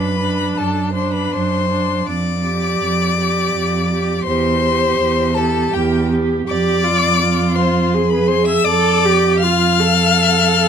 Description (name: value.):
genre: classical, slow romantic movement for string quartet.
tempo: 81 BPM.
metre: 3/4.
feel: rubato.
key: unclear.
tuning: A4 = 441 Hz.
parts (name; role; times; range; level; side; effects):
rich violin; melody; 0.0-10.7 s; G5 to F6; -19 LUFS; left 10 dB; none.
rich violin; second line; 0.0-10.7 s; G4 to F5; -22 LUFS; left 2 dB; none.
rich viola; accompaniment; 0.0-10.7 s; D4 to A4; -20 LUFS; right 3 dB; none.
rich cello; bass; 0.0-10.7 s; E2 to F#2; -18 LUFS; right 3 dB; none.
room: light reverb.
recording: close, detailed microphones.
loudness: -14 LUFS.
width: side -7 dB against mid.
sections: 0.0-10.7 A section.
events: none.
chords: 0.0 D7/F#; 2.1 G5/F; 4.3 C/E; 6.5 Fm; 8.7 G5/F.